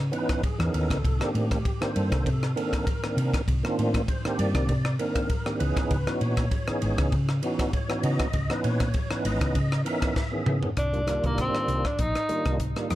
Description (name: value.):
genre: electric jazz fusion.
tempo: 99 BPM.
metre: 4/4.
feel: swing 53% on 16ths.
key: unclear.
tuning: A4 = 440 Hz.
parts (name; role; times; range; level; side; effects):
hollow-body short-scale fingered electric bass; bass; 0.0-13.0 s; Ab1 to Db3; -27 LUFS; equal; none.
tonewheel organ; accompaniment; 0.1-13.0 s; Eb3 to Fb5; -29 LUFS; right 1 dB; slow rotary speaker, overdrive, chorus vibrato, plate reverb.
crisp fusion drum kit; drums; 0.1-13.0 s; hi-hat, kick drum, ride cymbal, rim click, snare drum, toms; -28 LUFS; equal; none.
breathy tenor saxophone; melody; 10.8-12.6 s; Bb3 to Eb4; -28 LUFS; equal; plate reverb, tape echo.
room: light reverb.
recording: dark, warm production.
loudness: -24 LUFS.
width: side -15 dB against mid.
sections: 0.0-10.8 A section; 10.8-13.0 B section.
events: drum fill 10.2-10.8.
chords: 0.0 Dbm9; 1.0 Cm9; 5.6 Dbm9; 10.8 Cm11.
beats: 0.43 | 1.04 1.65 2.26 2.87 | 3.47 4.08 4.69 5.30 | 5.91 6.51 7.12 7.73 | 8.34 8.95 9.55 10.16 | 10.77 11.38 11.99 12.60.